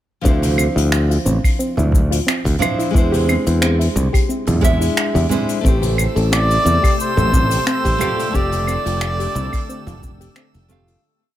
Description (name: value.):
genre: sunset chillout.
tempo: 89 BPM.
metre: 4/4.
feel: swing 53% on 16ths.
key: D minor.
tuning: A4 = 440 Hz.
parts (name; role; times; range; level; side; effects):
nylon-string guitar; accompaniment; 0.2-11.0 s; F3 to F5; -23 LUFS; right 1 dB; auto-pan, ping-pong delay.
soft round pluck; arpeggios; 0.2-11.0 s; C4 to A4; -25 LUFS; left 1 dB; chorus, ping-pong delay.
modern bright fingered electric bass; bass; 0.2-10.9 s; F1 to E2; -18 LUFS; equal; tube saturation.
electronic kick drum; drums; 0.2-10.2 s; none; -17 LUFS; equal; overdrive.
jazz brush drum kit; drums; 0.3-11.0 s; cabasa, claves, finger snaps, hi-hat; -24 LUFS; equal; none.
congas; percussion; 0.4-10.8 s; none; -27 LUFS; right 1 dB; none.
shimmering ambient pad; sustained chords; 6.3-11.0 s; C3 to G4; -29 LUFS; left 1 dB; chorus, built-in reverb.
drifting glass-harmonics texture; texture; 5.9-11.0 s; E6; -31 LUFS; right 5 dB; chorus, built-in reverb.
trumpet with cup mute; melody; 6.3-10.4 s; C5 to D5; -20 LUFS; equal; none.
room: studio ambience.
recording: none.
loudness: -14 LUFS.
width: side -13 dB against mid.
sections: 0.2-11.0 groove.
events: fade-out 7.4-11.0.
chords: 0.2 Dm9; 2.9 E7alt; 5.6 Am7; 8.0 F69.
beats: | 0.25 0.92 1.60 2.27 | 2.94 3.62 4.29 4.97 | 5.64 6.32 6.99 7.66 | 8.34 9.01 9.69 10.36.